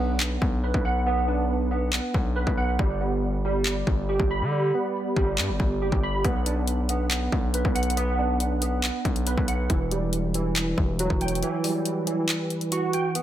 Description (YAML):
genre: hip hop, trap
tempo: 139 BPM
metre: 4/4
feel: half-time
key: B minor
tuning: A4 = 439 Hz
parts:
  - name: barky tine electric piano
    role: arpeggios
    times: 0.0-13.2 s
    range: E3 to B5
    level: -26 LUFS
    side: right 2 dB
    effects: ensemble chorus, low-pass filter, tape echo
  - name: distorted 808-style bass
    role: bass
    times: 0.0-11.4 s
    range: E1 to D3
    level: -27 LUFS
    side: equal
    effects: distortion
  - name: trap drum kit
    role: drums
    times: 0.2-13.2 s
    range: handclaps, hi-hat, kick drum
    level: -26 LUFS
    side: left 1 dB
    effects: none
room: light reverb, digital ambience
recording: none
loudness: -22 LUFS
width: side -12 dB against mid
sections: 0.0-13.2 A section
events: break 0.0-6.2; kick muted 11.4-13.2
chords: 0.0 Bm; 2.8 G; 6.2 Bm; 9.7 Emadd9